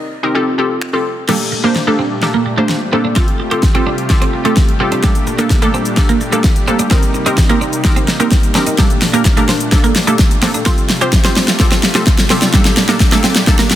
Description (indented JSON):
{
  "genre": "dance-pop",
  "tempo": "128 BPM",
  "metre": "4/4",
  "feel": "straight",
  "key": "G minor",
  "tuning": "A4 = 440 Hz",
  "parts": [
    { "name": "glassy wavetable pluck", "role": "accompaniment", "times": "0.0-13.7 s", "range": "Bb3 to C5", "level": "-17 LUFS", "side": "left 2 dB", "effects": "chorus, sidechain pumping" },
    { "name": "pop drum kit", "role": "drums", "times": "0.8-13.8 s", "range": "crash cymbal, finger snaps, hi-hat, kick drum, shaker, snare drum", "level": "-12 LUFS", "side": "equal", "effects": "none" },
    { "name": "soft supersaw", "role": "sustained chords", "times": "1.3-13.8 s", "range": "Bb2 to G4", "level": "-22 LUFS", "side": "equal", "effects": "sidechain pumping" },
    { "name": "twelve-string electric guitar", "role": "riff", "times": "1.3-13.7 s", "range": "G3 to G4", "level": "-19 LUFS", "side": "right 6 dB", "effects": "lush chorus" },
    { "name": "group handclap", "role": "percussion", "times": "9.3-13.1 s", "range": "none", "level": "-30 LUFS", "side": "left 3 dB", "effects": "none" }
  ],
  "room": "light reverb",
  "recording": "dense, heavily limited modern master",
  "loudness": "-11 LUFS",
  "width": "side -12 dB against mid",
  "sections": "0.0-1.3 A section; 1.3-13.8 B section",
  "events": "build-up 1.3-13.8; drum fill 1.3-13.8",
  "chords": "0.3 Fadd9; 1.3 Gmadd9; 3.2 Fadd9; 5.0 Gmadd9; 6.9 Cm7; 8.8 Gmadd9; 10.7 Fadd9; 12.5 Gmadd9",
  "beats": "0.35 0.82 | 1.29 1.76 2.23 2.69 | 3.16 3.63 4.10 4.57 | 5.04 5.51 5.97 6.44 | 6.91 7.38 7.85 8.32 | 8.79 9.26 9.72 10.19 | 10.66 11.13 11.60 12.07 | 12.54 13.01 13.47"
}